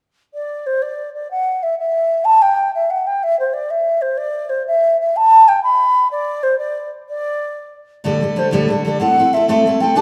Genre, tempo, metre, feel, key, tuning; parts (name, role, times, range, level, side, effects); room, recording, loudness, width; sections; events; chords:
celtic folk, Celtic jig; 124 BPM (dotted quarters); 6/8; straight; D mixolydian; A4 = 444 Hz
mellow baroque flute; melody; 0.3-10.0 s; C5 to B5; -17 LUFS; equal
picked steel-string acoustic guitar; accompaniment; 8.0-10.0 s; D2 to B4; -19 LUFS; equal
wet recital hall reverb, RT60 1.7 s; -16 LUFS; mono
0.3-8.0 A section; 8.0-10.0 A section
0.3 N.C.; 8.0 Dsus4; 9.0 Am